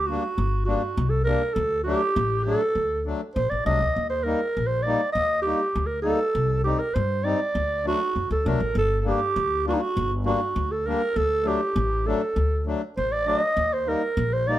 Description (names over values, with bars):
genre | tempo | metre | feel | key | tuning
klezmer | 100 BPM | 2/4 | straight | D phrygian dominant | A4 = 440 Hz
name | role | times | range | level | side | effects
growling clarinet | melody | 0.0-14.6 s | Eb4 to Eb5 | -24 LUFS | right 2 dB | plate reverb
upright bass | bass | 0.0-14.5 s | G1 to G2 | -26 LUFS | left 1 dB | none
accordion | accompaniment | 0.1-14.6 s | F#3 to Eb4 | -28 LUFS | left 4 dB | none
room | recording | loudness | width
moderate studio reverb, RT60 0.6 s | none | -22 LUFS | side -13 dB against mid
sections
0.0-8.8 A section; 8.8-14.6 A section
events
none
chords
0.0 Gm; 1.6 D; 4.0 Eb; 6.4 Cm; 7.6 D; 8.8 Gm; 11.2 D; 13.6 Eb